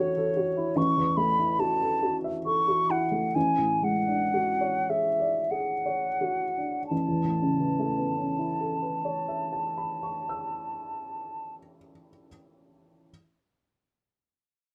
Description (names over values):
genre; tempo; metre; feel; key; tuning
classical, impressionist duo for flute and grand piano; 41-76 BPM; 3/4; rubato; A major; A4 = 441 Hz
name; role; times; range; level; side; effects
concert flute; melody; 0.0-11.5 s; C#5 to C#6; -30 LUFS; equal; none
warm baby grand piano; accompaniment; 0.0-13.1 s; A1 to E6; -31 LUFS; equal; none
room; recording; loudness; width
moderate studio reverb, RT60 0.7 s; none; -27 LUFS; mono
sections
0.0-6.9 A section; 6.9-10.8 B section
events
slowing down 0.0-6.9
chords
0.0 A5; 3.4 Dmaj7#11/A; 6.9 Aadd9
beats
| 0.77 1.60 2.46 | 3.35 4.34 5.52 | 6.91 8.20 9.49